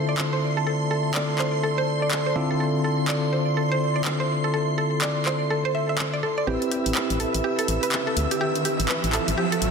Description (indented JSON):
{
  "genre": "deep house",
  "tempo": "124 BPM",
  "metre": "4/4",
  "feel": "swing 60% on 16ths",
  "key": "A minor",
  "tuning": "A4 = 440 Hz",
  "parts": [
    { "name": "deep dark ambient pad", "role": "sustained chords", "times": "0.0-9.7 s", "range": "C4 to C6", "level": "-30 LUFS", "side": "right 1 dB", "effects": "chorus, built-in reverb" },
    { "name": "bell-like tine electric piano", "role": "stabs", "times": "0.0-9.7 s", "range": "D3 to B4", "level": "-26 LUFS", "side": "left 1 dB", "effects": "medium stereo tremolo, low-pass filter, tape echo" },
    { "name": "string machine, violins", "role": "texture", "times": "0.0-9.7 s", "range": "E5 to C7", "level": "-32 LUFS", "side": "equal", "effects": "ensemble chorus" },
    { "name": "mallet-like synth pluck", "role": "arpeggios", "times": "0.1-9.6 s", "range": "G4 to E5", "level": "-28 LUFS", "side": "right 2 dB", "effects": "chorus, digital delay" },
    { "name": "house drum kit", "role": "drums", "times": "0.2-9.7 s", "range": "handclaps, hi-hat", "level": "-29 LUFS", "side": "equal", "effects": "overdrive" },
    { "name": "organ-like FM bass", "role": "bass", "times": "6.5-9.7 s", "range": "A1 to D2", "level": "-27 LUFS", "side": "equal", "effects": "none" },
    { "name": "riser", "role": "sound effects", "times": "7.7-9.7 s", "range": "none", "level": "-29 LUFS", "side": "right 2 dB", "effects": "none" }
  ],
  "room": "moderate lush hall reverb, RT60 2.0 s",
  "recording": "dense, heavily limited modern master",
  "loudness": "-21 LUFS",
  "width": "side -5 dB against mid",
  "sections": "0.0-6.5 A section; 6.5-9.7 B section",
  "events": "build-up 6.5-9.7; riser 7.7-9.7",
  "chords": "0.0 Dm9; 6.5 Am9",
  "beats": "0.18 | 0.67 1.15 1.63 2.12 | 2.60 3.09 3.57 4.05 | 4.54 5.02 5.50 5.99 | 6.47 6.96 7.44 7.92 | 8.41 8.89 9.38"
}